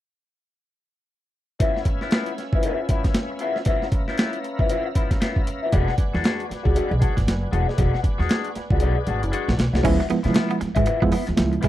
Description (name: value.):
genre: funk.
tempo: 116 BPM.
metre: 4/4.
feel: swing 60% on 16ths.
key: unclear.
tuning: A4 = 439 Hz.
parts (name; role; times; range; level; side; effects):
electric guitar through a small old amp; accompaniment; 1.6-11.7 s; F3 to F#4; -26 LUFS; left 4 dB; wah.
tonewheel organ; sustained chords; 1.6-9.8 s; Db4 to Bb5; -33 LUFS; equal; chorus vibrato, slow rotary speaker.
breakbeat sampler-style drum kit; drums; 1.6-11.7 s; crash cymbal, hi-hat, kick drum, snare drum; -22 LUFS; equal; overdrive.
upright bass; bass; 5.7-11.7 s; E1 to Db3; -23 LUFS; equal; none.
electric guitar at the edge of break-up; riff; 9.8-11.7 s; Ab3 to Db4; -28 LUFS; right 8 dB; none.
reed electric piano; stabs; 9.8-11.7 s; F3 to F4; -23 LUFS; right 4 dB; overdrive, fast tremolo.
room: little or no reverb.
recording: dry, close 1970s-style studio recording.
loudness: -20 LUFS.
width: side -14 dB against mid.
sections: 1.6-9.8 A section; 9.8-11.7 B section.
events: drum fill 8.8-9.8.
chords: 1.6 Db7#9; 5.7 E9; 9.8 Db7#9.